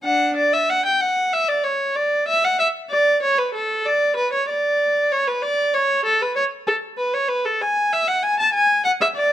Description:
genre	classical, baroque-style suite movement for unaccompanied viola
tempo	64 BPM (dotted quarters)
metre	12/8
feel	rubato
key	D major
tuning	A4 = 440 Hz
part	warm viola	solo	0.0-9.3 s	D4 to A5	-17 LUFS	equal	none
room	light reverb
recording	close, detailed microphones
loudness	-17 LUFS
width	side -12 dB against mid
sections	0.1-9.3 A section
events	none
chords	none

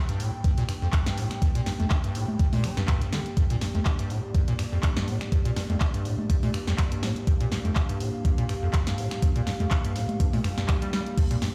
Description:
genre	acid house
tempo	123 BPM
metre	4/4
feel	swing 55% on 16ths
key	G minor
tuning	A4 = 442 Hz
part	dark analog pad	sustained chords	0.0-11.5 s	Bb3 to G5	-37 LUFS	equal	chorus, sidechain pumping
part	acid bass, square	riff	0.1-11.5 s	F2 to G3	-31 LUFS	equal	tube saturation, lush chorus, sidechain pumping
part	punchy analog drum machine	drums	0.1-11.5 s	congas, crash cymbal, finger snaps, handclaps, hi-hat, snare drum	-35 LUFS	equal	none
part	electronic kick drum	drums	0.4-11.3 s	none	-26 LUFS	equal	none
part	swell	sound effects	10.4-11.2 s	none	-43 LUFS	equal	none
room	light reverb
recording	played on a big sound system in a bare room, stone room reverb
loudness	-26 LUFS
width	mono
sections	0.0-11.5 A section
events	none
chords	0.0 Gm

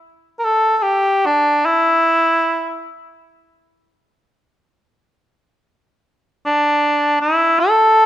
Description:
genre	japanese traditional, Japanese chamber music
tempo	free time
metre	none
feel	none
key	A in sen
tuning	A4 = 440 Hz
part	mellow cor anglais	solo	0.4-2.9, 6.5-8.1 s	D4 to Bb4	-13 LUFS	equal	none
room	moderate recital hall reverb, RT60 1.7 s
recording	minimal, uncompressed stereo recording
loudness	-13 LUFS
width	side -12 dB against mid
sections	0.0-8.1 A section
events	none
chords	none

